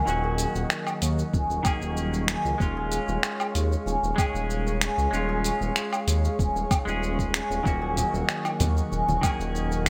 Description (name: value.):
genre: organic downtempo.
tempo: 95 BPM.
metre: 4/4.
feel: straight.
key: Eb minor.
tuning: A4 = 439 Hz.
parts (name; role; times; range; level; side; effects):
semi-hollow electric guitar; accompaniment; 0.0-9.9 s; Eb3 to Ab4; -33 LUFS; equal; sidechain pumping, delay.
airy breathy pad; sustained chords; 0.0-9.9 s; Ab4 to Db6; -38 LUFS; equal; chorus, sidechain pumping.
santur; arpeggios; 0.0-9.9 s; Db4 to Bb4; -33 LUFS; equal; delay.
smooth synth bass; bass; 0.0-9.9 s; Eb1 to Eb2; -30 LUFS; equal; sidechain pumping.
deep house drum kit; drums; 0.1-9.9 s; finger snaps, hi-hat, shaker, woodblock; -32 LUFS; equal; gated reverb.
electronic kick drum; drums; 1.3-9.4 s; none; -28 LUFS; equal; none.
congas and bongos; percussion; 8.0-9.9 s; none; -34 LUFS; equal; none.
room: moderate lush hall reverb, RT60 1.7 s.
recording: bright 1980s-style digital production.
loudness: -26 LUFS.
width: mono.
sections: 0.0-9.9 A section.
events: none.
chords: 0.0 Ebm7; 2.6 Db/Eb; 7.7 Ebm7.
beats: | 0.07 0.70 1.34 1.97 | 2.60 3.23 3.86 4.50 | 5.13 5.76 6.39 7.02 | 7.65 8.28 8.92 9.55.